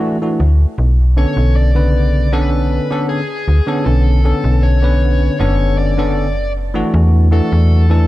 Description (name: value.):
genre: vaporwave.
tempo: 78 BPM.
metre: 4/4.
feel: straight.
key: B dorian.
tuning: A4 = 441 Hz.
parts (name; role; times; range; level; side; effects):
barky tine electric piano; accompaniment; 0.0-8.1 s; C#3 to B4; -18 LUFS; equal; analog chorus.
slap-like FM bass; bass; 0.4-8.1 s; F#1 to E2; -12 LUFS; equal; none.
dark smooth lead guitar; melody; 1.2-8.1 s; G#4 to D5; -23 LUFS; left 2 dB; overdrive, analog delay.
room: digital ambience.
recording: dark, warm production, lossy compression artefacts.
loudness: -12 LUFS.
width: side -16 dB against mid.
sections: 0.0-8.1 A section.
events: none.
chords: 0.0 E9sus4; 0.8 Bm9; 6.9 E9sus4.